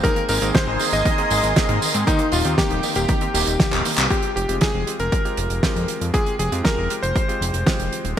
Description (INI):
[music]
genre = italo disco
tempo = 118 BPM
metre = 4/4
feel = straight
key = F minor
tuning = A4 = 440 Hz
[part]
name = bright electric grand piano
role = melody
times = 0.0-8.1 s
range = Eb4 to Eb5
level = -24 LUFS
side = left 1 dB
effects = ping-pong delay
[part]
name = lush unison pad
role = sustained chords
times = 0.0-4.1 s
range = Bb4 to C6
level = -26 LUFS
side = equal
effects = chorus, phaser
[part]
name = analog pluck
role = arpeggios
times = 0.0-4.0 s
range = Eb3 to Eb4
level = -30 LUFS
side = left 4 dB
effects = chorus, ping-pong delay
[part]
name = clear electric grand piano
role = stabs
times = 0.0-8.1 s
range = Ab3 to Ab4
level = -29 LUFS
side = right 3 dB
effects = vintage 12-bit sampler grit, ping-pong delay
[part]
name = damped 70s drum kit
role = drums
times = 0.0-8.1 s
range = handclaps, hi-hat, snare drum, tambourine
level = -23 LUFS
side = right 2 dB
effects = none
[part]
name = electronic kick drum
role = drums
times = 0.0-7.8 s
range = none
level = -23 LUFS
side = equal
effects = none
[part]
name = fat analog bass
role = bass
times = 0.3-8.2 s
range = Eb1 to Ab2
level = -24 LUFS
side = equal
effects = none
[sound]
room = moderate lush hall reverb, RT60 1.8 s, small room ambience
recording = bright 1980s-style digital production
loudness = -18 LUFS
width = side -10 dB against mid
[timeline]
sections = 0.0-4.1 A section; 4.1-8.2 B section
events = drum fill 3.7-4.1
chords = 0.0 Abadd9; 2.1 Eb6; 4.1 Fmadd9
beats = | 0.04 0.55 1.05 1.56 | 2.07 2.58 3.09 3.60 | 4.11 4.61 5.12 5.63 | 6.14 6.65 7.16 7.67